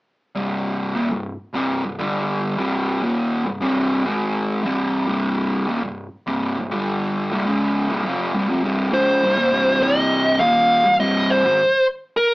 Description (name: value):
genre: metal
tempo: 101 BPM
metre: 4/4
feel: straight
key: C minor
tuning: A4 = 444 Hz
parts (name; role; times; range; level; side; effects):
- fuzz guitar; riff; 0.4-11.6 s; C2 to Ab3; -20 LUFS; equal; distortion
- fuzz lead guitar; melody; 8.9-12.3 s; Bb4 to F5; -16 LUFS; equal; distortion
room: moderate small room reverb, RT60 0.5 s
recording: rough rehearsal-room recording, AM radio sound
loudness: -18 LUFS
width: side -22 dB against mid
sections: 0.3-9.8 A section; 9.8-12.3 B section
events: none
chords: 0.3 C5; 2.0 G5; 2.6 Cm; 4.0 Ab5; 4.6 C5; 6.7 G5; 7.3 C5; 9.8 Cm